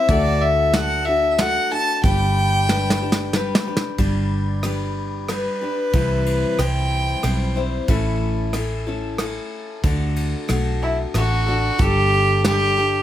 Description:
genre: honky-tonk and classic country.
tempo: 92 BPM.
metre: 3/4.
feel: straight.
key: G major.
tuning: A4 = 440 Hz.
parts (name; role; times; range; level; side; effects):
clear fiddle; melody; 0.0-7.6, 10.8-13.0 s; E4 to A5; -20 LUFS; equal; none.
picked steel-string acoustic guitar; accompaniment; 0.0-13.0 s; A2 to C5; -25 LUFS; left 3 dB; none.
vintage muted fingered electric bass; bass; 0.1-13.0 s; G1 to D2; -22 LUFS; equal; none.
soft brush drum kit; drums; 0.1-12.6 s; hi-hat, kick drum, ride cymbal, rim click, snare drum; -24 LUFS; right 1 dB; none.
room: light reverb.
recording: none.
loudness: -18 LUFS.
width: side -12 dB against mid.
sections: 0.0-4.0 A section; 4.0-11.8 B section; 11.8-13.0 A section.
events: drum fill 2.7-4.0.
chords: 0.1 D; 2.0 G; 5.9 C; 7.9 A; 9.8 D; 11.8 Gsus2.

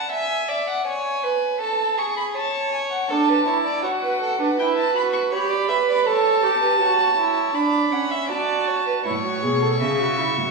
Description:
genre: classical, baroque-style fugue for string quartet.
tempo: 80 BPM.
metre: 4/4.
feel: straight.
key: D major.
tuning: A4 = 442 Hz.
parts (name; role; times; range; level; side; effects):
warm violin; melody; 0.0-10.5 s; E5 to C#6; -23 LUFS; equal; none.
warm violin; second line; 0.0-10.5 s; G#4 to F#5; -25 LUFS; right 2 dB; none.
warm viola; accompaniment; 3.1-10.5 s; C#4 to B4; -22 LUFS; right 4 dB; none.
dark cello; bass; 9.1-10.5 s; A2 to C#3; -24 LUFS; right 2 dB; none.
room: wet recital hall reverb, RT60 1.5 s.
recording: recorded in a church or concert hall, small room ambience.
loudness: -19 LUFS.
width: side -2 dB against mid.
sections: 0.0-10.5 A section.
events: none.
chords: 0.1 E7; 1.6 A; 3.1 D; 4.6 Em; 6.1 A7; 7.6 D; 9.1 A.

